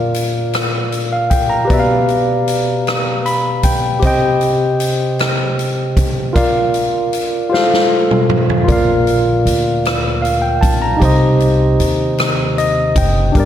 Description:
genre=slow gospel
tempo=52 BPM (dotted quarters)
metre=6/8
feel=straight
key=unclear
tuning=A4 = 440 Hz
part: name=barky tine electric piano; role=accompaniment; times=0.0-13.5 s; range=G2 to B5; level=-14 LUFS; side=equal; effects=medium stereo tremolo, slapback echo
part: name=swinging big-band drum kit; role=drums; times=0.1-13.5 s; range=hi-hat, kick drum, rim click, snare drum, toms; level=-18 LUFS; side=equal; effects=none
part: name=upright bass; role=bass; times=8.7-13.5 s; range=Gb1 to Eb2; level=-18 LUFS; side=equal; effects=none
room=wet lush hall reverb, RT60 2.5 s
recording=big arena sound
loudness=-12 LUFS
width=side -10 dB against mid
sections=0.0-13.5 A section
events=tine electric piano fill 2.9-4.0, 12.2-13.3; drum fill 7.5-8.7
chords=0.0 Bb; 1.7 G7/B; 4.0 Cm; 6.4 Bb/F; 7.5 F; 8.7 Bb; 11.0 Cm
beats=0.54 | 1.70 2.87 | 4.03 5.19 | 6.36 7.52 | 8.69 9.85 | 11.02 12.18 | 13.35

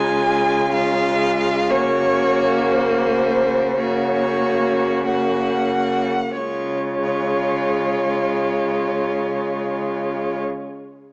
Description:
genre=classical, slow romantic movement for string quartet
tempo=45-64 BPM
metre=4/4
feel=rubato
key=Db major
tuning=A4 = 438 Hz
part: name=clear violin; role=melody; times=0.0-10.4 s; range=C5 to Ab5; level=-24 LUFS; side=equal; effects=none
part: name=clear violin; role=second line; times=0.0-10.4 s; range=F4 to Gb4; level=-26 LUFS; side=equal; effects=none
part: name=rich viola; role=accompaniment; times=0.0-10.4 s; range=Ab3 to Bb3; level=-26 LUFS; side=equal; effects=none
part: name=clear cello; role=bass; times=0.0-10.4 s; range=Db3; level=-28 LUFS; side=equal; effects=none
room=wet recital hall reverb, RT60 1.6 s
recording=worn, warbling old tape, cassette tape, warbly pitch drift, small speaker sound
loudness=-20 LUFS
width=mono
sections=0.0-6.4 A section; 6.4-11.0 B section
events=slowing down 0.0-6.4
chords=0.0 Db; 1.7 Gb/Db; 6.4 Db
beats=0.73 | 1.70 2.71 3.79 5.08 | 6.37 7.54 8.72 9.86

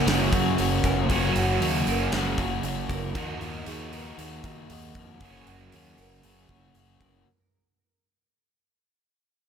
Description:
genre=rock, shoegaze and dream pop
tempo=117 BPM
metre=4/4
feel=straight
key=F# major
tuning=A4 = 440 Hz
part: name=picked twelve-string acoustic guitar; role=arpeggios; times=0.0-7.3 s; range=E#4 to A#4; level=-36 LUFS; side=right 9 dB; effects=wide subtle chorus, analog delay
part: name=overdriven electric guitar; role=riff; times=0.0-7.3 s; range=F#2 to F#4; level=-29 LUFS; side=left 10 dB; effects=lush chorus
part: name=overdriven electric guitar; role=riff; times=0.0-7.3 s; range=F#2 to F#4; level=-29 LUFS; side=right 8 dB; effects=reverse reverb
part: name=growling fingered electric bass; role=bass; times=0.1-7.2 s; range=F#1 to D#3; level=-31 LUFS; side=equal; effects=overdrive
part: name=huge arena drum kit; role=drums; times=0.1-7.1 s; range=hi-hat, kick drum, snare drum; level=-30 LUFS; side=right 1 dB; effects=none
room=light reverb, small room ambience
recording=none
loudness=-23 LUFS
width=side -7 dB against mid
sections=0.0-7.3 A section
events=fade-out 0.0-7.3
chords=0.0 F#; 3.2 D#madd9; 5.2 F#add9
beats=0.07 0.58 | 1.10 1.61 2.12 2.64 | 3.15 3.67 4.18 4.69 | 5.21 5.72 6.24 6.75

